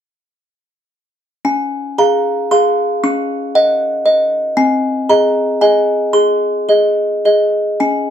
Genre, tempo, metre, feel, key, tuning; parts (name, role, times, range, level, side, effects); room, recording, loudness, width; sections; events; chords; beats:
classical, lullaby for music box; 114 BPM; 3/4; rubato; Db major; A4 = 440 Hz
music box; solo; 1.4-8.1 s; C4 to Db6; -12 LUFS; equal
little or no reverb; dry, close 1970s-style studio recording; -12 LUFS; side -9 dB against mid
1.4-8.1 A section
1.4 Db; 3.0 Ebm7/Db; 4.6 Ab/C; 6.1 Ab
| 1.45 1.98 2.50 | 3.03 3.54 4.06 | 4.57 5.09 5.61 | 6.14 6.69 7.25 | 7.80